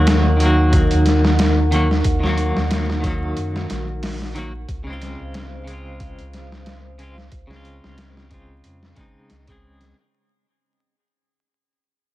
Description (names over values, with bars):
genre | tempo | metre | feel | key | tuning
trip hop | 91 BPM | 4/4 | swing 56% on 16ths | unclear | A4 = 435 Hz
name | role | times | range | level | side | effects
clean electric guitar | accompaniment | 0.0-10.0 s | Db3 to Ab4 | -23 LUFS | equal | tremolo, tape echo
dark analog pad | sustained chords | 0.0-9.9 s | Eb4 to Gb5 | -25 LUFS | right 1 dB | chorus, vintage 12-bit sampler grit
soft dub sub bass | bass | 0.0-9.9 s | Bb1 to Gb2 | -21 LUFS | equal | none
trip hop sampler-style drum kit | drums | 0.1-10.0 s | hi-hat, kick drum, snare drum | -22 LUFS | left 1 dB | none
room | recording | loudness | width
digital ambience | vinyl crackle | -16 LUFS | side -16 dB against mid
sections
0.0-10.0 A section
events
fade-out 0.0-10.0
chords
0.0 Ebm; 4.7 Dbmaj7